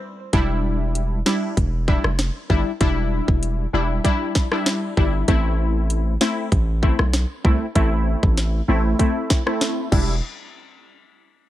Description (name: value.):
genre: dancehall.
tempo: 97 BPM.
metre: 4/4.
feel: straight.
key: E minor.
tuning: A4 = 441 Hz.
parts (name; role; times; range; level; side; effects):
synth brass stab; accompaniment; 0.3-10.2 s; G3 to E4; -23 LUFS; left 1 dB; chorus, sidechain pumping, low-pass filter.
hard-hitting 808-style bass; bass; 0.3-10.2 s; E1 to C2; -21 LUFS; equal; none.
island pop drum kit; drums; 0.3-10.1 s; crash cymbal, hi-hat, kick drum, rim click, snare drum; -20 LUFS; equal; overdrive.
room: little or no reverb.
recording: none.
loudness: -18 LUFS.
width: side -14 dB against mid.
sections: 0.3-10.2 A section; 10.2-11.5 B section.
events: break 0.0-0.3; filter sweep on synth stab 0.3-10.2.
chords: 0.3 Em7; 5.3 Am; 9.9 Em7; 10.2 N.C..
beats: | 0.33 0.95 1.57 2.19 | 2.81 3.43 4.04 4.66 | 5.28 5.90 6.52 7.14 | 7.76 8.38 8.99 9.61.